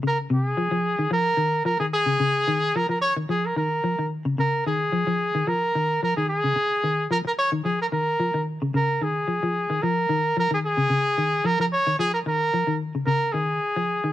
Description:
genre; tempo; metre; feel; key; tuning
afrobeat; 110 BPM; 4/4; swing 54% on 16ths; Bb minor; A4 = 439 Hz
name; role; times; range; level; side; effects
semi-hollow electric guitar; arpeggios; 0.0-14.1 s; C3 to F3; -26 LUFS; left 2 dB; wide subtle chorus
warm trumpet; melody; 0.1-14.1 s; Ab4 to Db5; -23 LUFS; equal; none
room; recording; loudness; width
light reverb; none; -21 LUFS; side -13 dB against mid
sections
0.0-14.1 A section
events
none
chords
0.0 Bbm7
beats
| 0.02 0.57 1.11 1.66 | 2.20 2.75 3.29 3.84 | 4.38 4.92 5.47 6.01 | 6.56 7.10 7.64 8.19 | 8.73 9.28 9.82 10.36 | 10.91 11.45 11.99 12.54 | 13.08 13.62

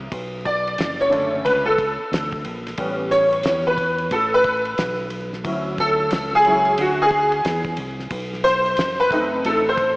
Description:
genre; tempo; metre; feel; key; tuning
hip hop, jazz-hop; 90 BPM; 4/4; swing 62% on 16ths; unclear; A4 = 441 Hz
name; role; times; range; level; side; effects
clear grand piano; accompaniment; 0.0-10.0 s; D3 to D5; -18 LUFS; equal; ensemble chorus
deep dub fingered electric bass; bass; 0.0-10.0 s; F#1 to E2; -30 LUFS; equal; none
cloth-damped thuddy drum kit; drums; 0.1-10.0 s; hi-hat, kick drum, ride cymbal, snare drum; -30 LUFS; equal; none
room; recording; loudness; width
wet lush hall reverb, RT60 2.5 s; dreamy mix soaked in reverb, vinyl crackle, small speaker sound; -18 LUFS; side -22 dB against mid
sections
0.1-10.0 A section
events
grand piano solo 0.1-10.0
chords
0.1 Bm9; 2.8 A9; 5.4 Dmaj7; 8.1 B7b9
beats
| 0.11 0.78 1.45 2.11 | 2.78 3.45 4.11 4.78 | 5.45 6.11 6.78 7.45 | 8.11 8.78 9.45

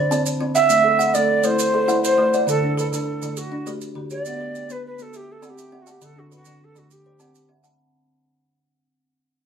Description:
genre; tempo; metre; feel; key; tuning
southern african traditional, mbira-style interlocking cycle; 136 BPM (dotted quarters); 12/8; straight; unclear; A4 = 440 Hz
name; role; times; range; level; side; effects
mellow hollow Native American-style cedar flute; melody; 0.0-7.5 s; F#4 to E5; -20 LUFS; right 2 dB; none
kalimba; arpeggios; 0.0-7.9 s; D3 to A5; -24 LUFS; left 1 dB; none
maracas; percussion; 0.1-7.8 s; none; -30 LUFS; right 5 dB; none
marimba with soft mallets; arpeggios; 0.7-7.9 s; D3 to A5; -26 LUFS; right 3 dB; none
room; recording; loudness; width
wet studio reverb, RT60 0.6 s; band playing live in one room, lossy compression artefacts; -17 LUFS; side -7 dB against mid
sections
0.0-7.8 A section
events
fade-out 0.0-7.8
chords
0.0 C69; 0.7 Am; 2.5 D; 4.3 Bm; 5.1 C; 6.0 D; 6.9 C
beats
0.26 | 0.71 1.15 1.59 2.04 | 2.48 2.92 3.37 3.81 | 4.25 4.70 5.14 5.58 | 6.02 6.46 6.90 7.34

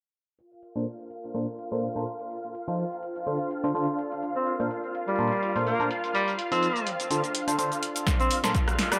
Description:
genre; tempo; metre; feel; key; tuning
piano house; 125 BPM; 4/4; swing 55% on 16ths; Bb major; A4 = 439 Hz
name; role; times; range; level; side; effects
analog string pad; sustained chords; 0.9-9.0 s; F4 to F5; -37 LUFS; equal; ensemble chorus, sidechain pumping
punchy analog drum machine; drums; 0.4-9.0 s; hi-hat, rim click, shaker, snare drum; -33 LUFS; equal; dub echo
warbly tape-like pad; texture; 0.4-9.0 s; D4 to C6; -38 LUFS; equal; chorus, built-in reverb, sidechain pumping
barking FM electric piano; riff; 0.8-8.5 s; Bb2 to C5; -33 LUFS; equal; phaser, sidechain pumping, low-pass filter, dub echo
clear tenor saxophone; melody; 4.4-9.0 s; G3 to C4; -31 LUFS; equal; low-pass filter, dub echo
electronic kick drum; drums; 8.1-8.7 s; none; -28 LUFS; equal; none
riser; sound effects; 8.6-9.0 s; none; -42 LUFS; equal; none
room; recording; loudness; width
wet spring reverb, RT60 1.8 s, digital ambience; echo-heavy mix, low-pass filter; -28 LUFS; mono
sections
0.4-8.1 A section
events
filter sweep 0.4-8.1; drum fill 8.1-9.0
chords
0.4 Bbmaj9; 2.3 F7; 3.0 Dm7; 4.2 Bbmaj9; 6.1 F7; 6.9 Dm7; 8.1 Bbadd9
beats
| 0.39 0.87 1.35 1.83 | 2.31 2.79 3.27 3.75 | 4.23 4.71 5.19 5.67 | 6.15 6.63 7.11 7.59 | 8.07 8.55

